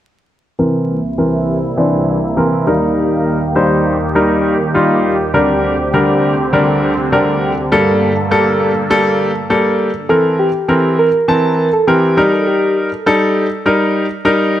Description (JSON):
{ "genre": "pop", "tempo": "101 BPM", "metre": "4/4", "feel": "straight", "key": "unclear", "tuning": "A4 = 439 Hz", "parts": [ { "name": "clear grand piano", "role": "accompaniment", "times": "0.6-14.6 s", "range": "D3 to A5", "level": "-13 LUFS", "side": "left 1 dB", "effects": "low-pass filter" }, { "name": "filtered supersaw swell", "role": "sustained chords", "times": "0.6-10.1 s", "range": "C2 to A4", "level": "-17 LUFS", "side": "right 1 dB", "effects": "low-pass filter" }, { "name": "soft struck synth lead", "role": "melody", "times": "10.1-12.3 s", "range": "G4 to Bb4", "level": "-15 LUFS", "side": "right 1 dB", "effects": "chorus, analog delay" } ], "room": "moderate echo chamber reverb, RT60 1.7 s, small room ambience", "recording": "echo-heavy mix, vinyl crackle", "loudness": "-12 LUFS", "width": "side -12 dB against mid", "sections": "0.6-10.1 A section; 10.1-14.6 B section", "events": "filter sweep 0.6-10.1", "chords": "0.6 C7; 2.7 Eb; 5.3 Bb6/D; 7.7 Gmadd9; 10.1 C7; 12.2 Eb" }